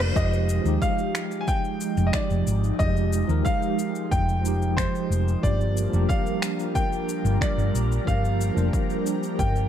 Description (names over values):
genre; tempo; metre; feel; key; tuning
sunset chillout; 91 BPM; 4/4; straight; F dorian; A4 = 439 Hz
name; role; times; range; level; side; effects
clear grand piano; melody; 0.0-9.7 s; C5 to Ab5; -30 LUFS; equal; ping-pong delay
tine electric piano; accompaniment; 0.0-9.7 s; F3 to C5; -30 LUFS; equal; fast stereo tremolo, auto-pan, ping-pong delay
airy breathy pad; sustained chords; 0.0-9.7 s; F3 to D6; -30 LUFS; right 3 dB; chorus, phaser
hollow-body short-scale fingered electric bass; bass; 0.0-9.7 s; F1 to Eb2; -23 LUFS; equal; none
electronic rim click, cabasa and finger snaps; drums; 0.0-9.7 s; none; -34 LUFS; left 1 dB; overdrive, studio reverb
electronic kick drum; drums; 0.2-9.5 s; none; -26 LUFS; equal; overdrive, studio reverb
room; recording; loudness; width
digital ambience; dark, warm production; -22 LUFS; side -10 dB against mid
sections
0.2-9.7 A section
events
drum fill 0.0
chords
0.2 Fm9; 5.4 Gm7